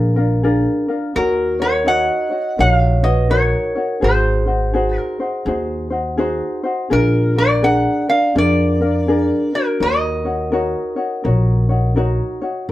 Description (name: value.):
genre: Hawaiian.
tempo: 83 BPM.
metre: 4/4.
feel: swing 62% on 8ths.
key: Eb minor.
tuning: A4 = 440 Hz.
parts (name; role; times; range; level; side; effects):
metal-body resonator slide guitar; melody; 0.0-11.9 s; Bb4 to Gb5; -19 LUFS; equal; none.
vibraphone with soft mallets; second line; 0.0-11.9 s; F4 to Eb5; -24 LUFS; right 1 dB; none.
ukulele; accompaniment; 0.0-12.7 s; D4 to Db5; -20 LUFS; left 1 dB; none.
upright bass; bass; 0.0-12.7 s; F#1 to F2; -18 LUFS; equal; none.
room: wet small room ambience, RT60 0.5 s.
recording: band playing live in one room.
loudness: -15 LUFS.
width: side -15 dB against mid.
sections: 0.0-12.7 A section.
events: none.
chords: 0.0 Bb7; 1.2 Ebm7; 4.0 Ab7; 6.9 Bb7; 9.8 Ebm7.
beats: 0.43 | 1.15 1.87 2.59 3.31 | 4.03 4.75 5.47 6.19 | 6.92 7.64 8.36 9.08 | 9.80 10.53 11.25 11.97 | 12.69.